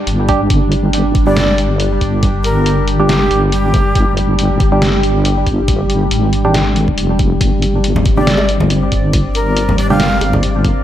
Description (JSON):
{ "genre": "deep dubstep", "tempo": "139 BPM", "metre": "4/4", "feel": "swing 55% on 16ths, half-time", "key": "unclear", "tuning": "A4 = 440 Hz", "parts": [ { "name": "deep dark ambient pad", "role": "sustained chords", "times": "0.0-10.8 s", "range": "G3 to D5", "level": "-18 LUFS", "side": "equal", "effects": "chorus, built-in reverb" }, { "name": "deep soft wobble bass", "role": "bass", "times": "0.1-10.8 s", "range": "F1 to Ab1", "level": "-15 LUFS", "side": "equal", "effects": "chorus, tube saturation" }, { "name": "trip hop sampler-style drum kit", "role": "drums", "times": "0.1-10.7 s", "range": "hi-hat, snare drum", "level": "-20 LUFS", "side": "equal", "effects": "none" }, { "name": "percussive organ stab", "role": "stabs", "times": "0.3-10.0 s", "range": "G3 to G4", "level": "-21 LUFS", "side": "right 2 dB", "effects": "chorus, dub echo" }, { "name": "electronic kick drum", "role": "drums", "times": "0.3-10.7 s", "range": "none", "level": "-15 LUFS", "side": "equal", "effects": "none" }, { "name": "breathy bright shakuhachi", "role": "melody", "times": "1.3-4.1, 8.2-10.3 s", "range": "G4 to F5", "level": "-21 LUFS", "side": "equal", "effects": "dub echo" }, { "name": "congas and bongos", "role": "percussion", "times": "8.0-10.4 s", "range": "none", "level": "-19 LUFS", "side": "equal", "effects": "none" } ], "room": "moderate plate reverb, RT60 2.0 s", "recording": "dreamy mix soaked in reverb", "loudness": "-11 LUFS", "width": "side -11 dB against mid", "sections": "0.0-10.8 A section", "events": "none", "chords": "0.0 G5", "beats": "0.07 | 0.50 0.93 1.36 1.80 | 2.23 2.66 3.09 3.52 | 3.96 4.39 4.82 5.25 | 5.68 6.11 6.54 6.98 | 7.41 7.84 8.27 8.70 | 9.13 9.57 10.00 10.43" }